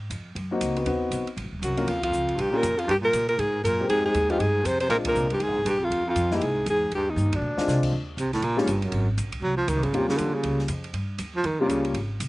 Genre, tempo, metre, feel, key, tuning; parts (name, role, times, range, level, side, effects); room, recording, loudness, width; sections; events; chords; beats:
jazz, small-group swing and bop; 238 BPM; 4/4; swing 60% on 8ths; Eb mixolydian; A4 = 441 Hz
upright bass; bass; 0.0-12.3 s; Eb1 to C3; -29 LUFS; equal
open jazz drum kit; drums; 0.1-12.3 s; crash cymbal, hi-hat, kick drum, ride cymbal, snare drum; -37 LUFS; right 1 dB
warm upright piano; accompaniment; 0.5-11.9 s; G3 to Bb4; -27 LUFS; left 2 dB
clear alto saxophone; melody; 1.6-7.8 s; D4 to C5; -24 LUFS; equal; slapback echo
breathy baritone saxophone; second line; 1.6-11.8 s; D2 to Gb3; -28 LUFS; right 2 dB; slapback echo
little or no reverb; recorded outdoors, with no room sound, nothing above 10.8 kHz; -22 LUFS; side -20 dB against mid
0.0-7.9 A section; 7.9-12.3 B section
band accent 2.0, 5.0, 7.3; drum fill 7.2-7.7; baritone saxophone solo 7.9-12.3
0.0 Ab9 (rootless); 0.9 Adim7 (rootless); 1.9 Eb9; 2.9 Gm; 3.4 Cm7; 3.9 Fm7; 4.9 Bb9; 5.9 Ebsus2; 6.4 Caug; 6.9 Eb; 7.4 Bb9; 7.9 Eb; 8.9 Abadd9; 9.9 Eb9
0.11 0.36 0.61 | 0.87 1.12 1.37 1.62 | 1.88 2.13 2.38 2.63 | 2.88 3.14 3.39 3.64 | 3.89 4.14 4.40 4.65 | 4.90 5.15 5.40 5.66 | 5.91 6.16 6.41 6.66 | 6.92 7.17 7.42 7.67 | 7.92 8.17 8.43 8.68 | 8.93 9.18 9.43 9.69 | 9.94 10.19 10.44 10.69 | 10.94 11.20 11.45 11.70 | 11.95 12.20